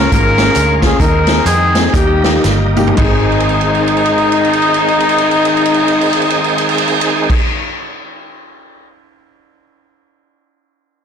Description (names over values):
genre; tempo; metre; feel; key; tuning
uptempo gospel; 108-142 BPM; 4/4; swing 61% on 8ths; Ab major; A4 = 439 Hz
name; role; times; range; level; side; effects
mellow horn section; melody; 0.0-7.3 s; Bb3 to Bb4; -14 LUFS; left 2 dB; slapback echo
warm upright piano; accompaniment; 0.0-7.4 s; Ab1 to Ab4; -20 LUFS; left 4 dB; none
overdriven tonewheel organ; sustained chords; 0.0-7.3 s; Eb3 to Ab4; -18 LUFS; right 3 dB; fast rotary speaker, chorus vibrato
vintage muted fingered electric bass; bass; 0.0-7.3 s; G1 to F2; -16 LUFS; right 1 dB; transformer saturation
swinging big-band drum kit; drums; 0.1-8.9 s; crash cymbal, hi-hat, kick drum, ride cymbal, snare drum, toms; -16 LUFS; right 2 dB; none
tambourine and handclaps; percussion; 0.1-7.3 s; none; -28 LUFS; right 7 dB; none
room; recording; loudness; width
light reverb, small room ambience; blown-out, overdriven recording, overdrive; -10 LUFS; side -7 dB against mid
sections
0.0-3.0 A section; 3.0-7.4 B section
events
slowing down 0.0-3.0; drum fill 2.4-3.0, 3.3-7.3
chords
0.1 Db/Ab; 1.0 Ab/Eb; 1.9 Eb; 3.0 Ab